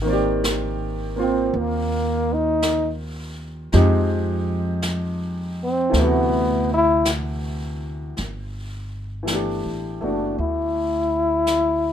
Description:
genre	jazz ballad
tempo	55 BPM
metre	4/4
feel	swing 67% on 8ths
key	G major from 8.2 s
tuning	A4 = 444 Hz
part	warm upright piano	accompaniment	0.0-11.9 s	C3 to D5	-25 LUFS	equal	none
part	upright bass	bass	0.0-11.9 s	F#1 to F2	-25 LUFS	right 1 dB	none
part	jazz brush drum kit	drums	0.4-11.9 s	brushed snare drum, hi-hat, snare drum	-30 LUFS	equal	none
part	breathy trombone	melody	1.2-11.9 s	Bb3 to E4	-20 LUFS	left 1 dB	none
room	light reverb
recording	minimal, uncompressed stereo recording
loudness	-19 LUFS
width	side -9 dB against mid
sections	0.0-8.2 A section; 8.2-11.9 B section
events	trombone solo 0.0-8.2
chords	0.0 Abmaj9#11; 3.7 Fm9; 5.9 D13; 8.2 G69

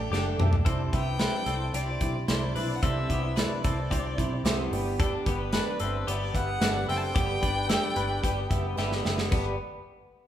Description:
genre	jangly indie pop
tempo	111 BPM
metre	4/4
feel	straight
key	G major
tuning	A4 = 440 Hz
part	warm violin	melody	0.0-8.8 s	B4 to G6	-34 LUFS	equal	none
part	picked steel-string acoustic guitar	accompaniment	0.0-9.5 s	G2 to A4	-35 LUFS	right 4 dB	none
part	warm studio string section	sustained chords	0.0-0.6 s	none	barely audible	none	none
part	twelve-string electric guitar	arpeggios	0.0-9.6 s	B3 to C5	-34 LUFS	left 5 dB	spring reverb
part	vintage muted picked electric bass	bass	0.0-9.6 s	F#1 to C2	-32 LUFS	equal	none
part	overdriven combo organ	accompaniment	0.1-9.6 s	E4 to F#5	-37 LUFS	right 2 dB	none
part	modern studio drum kit	drums	0.1-9.4 s	crash cymbal, hi-hat, kick drum, snare drum, toms	-29 LUFS	equal	none
room	wet large studio reverb, RT60 1.3 s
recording	band playing live in one room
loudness	-25 LUFS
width	side -11 dB against mid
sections	0.7-9.3 A section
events	drum fill 0.1-0.7, 8.8-9.3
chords	0.0 Gsus2; 0.7 Cadd9; 4.7 G

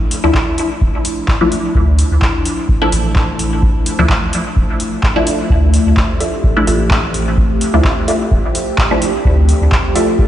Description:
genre	dub techno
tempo	128 BPM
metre	4/4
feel	swing 54% on 16ths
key	D minor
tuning	A4 = 440 Hz
part	warbly tape-like pad	sustained chords	0.0-10.3 s	F3 to G4	-20 LUFS	left 1 dB	chorus, built-in reverb, phaser, sidechain pumping
part	soft dub sub bass	bass	0.0-9.7 s	D1 to D2	-14 LUFS	equal	sidechain pumping
part	booming analog drum machine	drums	0.1-10.1 s	handclaps, hi-hat	-21 LUFS	equal	dub echo
part	filtered dub chord stab	stabs	0.2-10.3 s	F3 to E4	-19 LUFS	left 1 dB	phaser, dub echo
part	electronic kick drum	drums	0.3-10.3 s	none	-15 LUFS	equal	none
part	warbly dusty pluck	riff	6.2-10.1 s	F4 to E5	-21 LUFS	right 1 dB	chorus, vintage 12-bit sampler grit, sidechain pumping, dub echo
room	light reverb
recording	played on a big sound system in a bare room, stone room reverb, nothing above 10.8 kHz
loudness	-12 LUFS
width	side -12 dB against mid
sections	0.0-10.3 A section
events	none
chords	0.0 Dmadd9

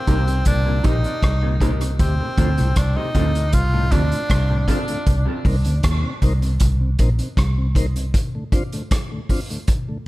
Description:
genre	dub reggae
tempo	78 BPM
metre	4/4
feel	straight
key	C dorian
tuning	A4 = 440 Hz
part	bright tenor saxophone	melody	0.0-4.7 s	C4 to F4	-26 LUFS	equal	tape echo
part	electric guitar at the edge of break-up	accompaniment	0.1-4.8 s	C4 to Bb4	-30 LUFS	right 3 dB	tremolo, tape echo
part	tonewheel organ	accompaniment	0.1-10.0 s	D2 to C4	-31 LUFS	left 1 dB	slow rotary speaker
part	mellow clav	arpeggios	0.1-4.8 s	A2 to C3	-31 LUFS	left 4 dB	phaser, tape echo
part	vintage muted fingered electric bass	bass	0.1-8.1 s	Bb1 to Eb2	-19 LUFS	equal	none
part	vintage drum kit	drums	0.1-9.9 s	hi-hat, kick drum, rim click	-21 LUFS	equal	none
room	studio reverb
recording	echo-heavy mix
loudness	-17 LUFS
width	side -18 dB against mid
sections	0.0-10.1 A section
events	break 8.1-10.1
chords	0.0 Cm7; 2.0 Dm7; 5.1 Cm7; 8.1 Dm7

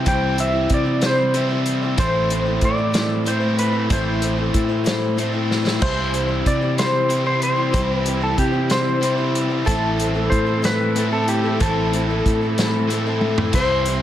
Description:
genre	folk rock and heartland rock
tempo	62 BPM (dotted quarters)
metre	6/8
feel	straight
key	unclear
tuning	A4 = 440 Hz
part	clean lap steel guitar	melody	0.0-14.0 s	G4 to G5	-23 LUFS	right 1 dB	slapback echo
part	picked twelve-string acoustic guitar	accompaniment	0.0-14.0 s	A2 to C5	-25 LUFS	left 5 dB	none
part	overdriven electric guitar	riff	0.0-14.0 s	A2 to E4	-25 LUFS	right 1 dB	none
part	fingered electric bass	bass	0.0-14.0 s	A1 to C3	-23 LUFS	equal	none
part	vintage drum kit	drums	0.1-14.0 s	crash cymbal, hi-hat, kick drum, snare drum, toms	-23 LUFS	equal	none
part	rich studio string section	sustained chords	5.8-14.0 s	E3 to A4	-32 LUFS	right 1 dB	none
room	small room ambience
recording	none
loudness	-17 LUFS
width	side -11 dB against mid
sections	0.0-5.8 A section; 5.8-14.0 A section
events	drum fill 5.5-5.8, 13.2-13.5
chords	0.0 C; 2.0 Am; 5.8 C; 9.7 Am

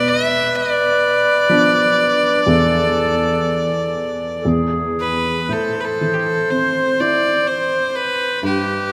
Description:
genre	celtic folk, Celtic slow air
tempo	57-64 BPM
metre	3/4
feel	rubato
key	A minor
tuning	A4 = 440 Hz
part	clear fiddle	melody	0.0-8.9 s	G4 to E5	-20 LUFS	equal	none
part	bright baroque flute	second line	0.0-8.9 s	G#4 to C5	-23 LUFS	equal	none
part	felt-muted upright piano	accompaniment	0.0-8.9 s	E2 to E4	-24 LUFS	equal	none
room	wet cathedral reverb, RT60 4.7 s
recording	none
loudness	-17 LUFS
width	mono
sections	0.0-5.5 A section; 5.5-8.9 B section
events	none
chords	0.0 Bdim; 2.5 N.C.; 5.5 Am; 8.4 G

